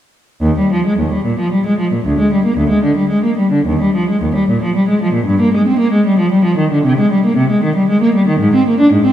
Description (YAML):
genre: classical, baroque-style suite movement for unaccompanied cello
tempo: 114 BPM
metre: 3/4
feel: rubato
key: Eb major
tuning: A4 = 440 Hz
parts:
  - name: dark cello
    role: solo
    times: 0.4-9.1 s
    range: D2 to D4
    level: -11 LUFS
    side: equal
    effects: none
room: wet scoring stage reverb, RT60 1.8 s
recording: recorded in a church or concert hall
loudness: -11 LUFS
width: side -11 dB against mid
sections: 0.4-9.1 A section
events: none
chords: none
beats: | 0.42 0.99 1.52 | 2.05 2.58 3.11 | 3.67 4.23 4.76 | 5.28 5.80 6.32 | 6.85 7.38 7.89 | 8.41 8.92